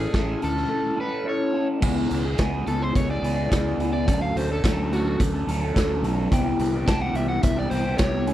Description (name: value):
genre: indie rock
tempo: 107 BPM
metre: 4/4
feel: straight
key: unclear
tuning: A4 = 440 Hz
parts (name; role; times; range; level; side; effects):
- overdriven semi-hollow guitar; melody; 0.0-8.3 s; F#4 to A5; -29 LUFS; equal; slapback echo
- electric guitar through a small old amp; riff; 0.0-8.3 s; E3 to A4; -25 LUFS; left 1 dB; phaser
- fuzz fingered electric bass; bass; 0.0-8.3 s; A1 to D2; -27 LUFS; equal; overdrive
- raw garage drum kit; drums; 0.1-8.3 s; crash cymbal, hi-hat, kick drum, snare drum; -26 LUFS; equal; none
room: little or no reverb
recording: none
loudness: -21 LUFS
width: side -13 dB against mid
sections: 0.0-1.8 A section; 1.8-8.3 B section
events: overdriven electric guitar solo 1.8-8.3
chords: 0.0 A; 1.8 C#m7; 4.1 Dmaj7; 6.3 Cmaj7